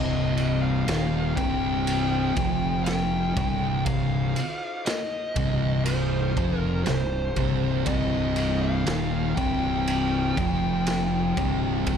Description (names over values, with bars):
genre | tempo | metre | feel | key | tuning
stoner and doom metal | 60 BPM | 4/4 | straight | C minor | A4 = 440 Hz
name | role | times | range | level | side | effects
fuzz lead guitar | melody | 0.0-12.0 s | C5 to G5 | -30 LUFS | left 2 dB | distortion
thick fuzz guitar | riff | 0.0-12.0 s | C2 to F3 | -28 LUFS | left 11 dB | distortion
thick fuzz guitar | riff | 0.0-12.0 s | C2 to F3 | -28 LUFS | right 10 dB | distortion
fuzz fingered electric bass | bass | 0.0-12.0 s | C1 to F1 | -30 LUFS | equal | overdrive
raw garage drum kit | drums | 0.4-12.0 s | kick drum, ride cymbal, snare drum | -31 LUFS | right 1 dB | none
room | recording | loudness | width
light reverb | dark, warm production | -22 LUFS | side -7 dB against mid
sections
0.0-12.0 A section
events
none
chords
0.0 Cm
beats
0.88 1.88 2.88 | 3.88 4.88 5.88 6.88 | 7.88 8.88 9.88 10.88 | 11.88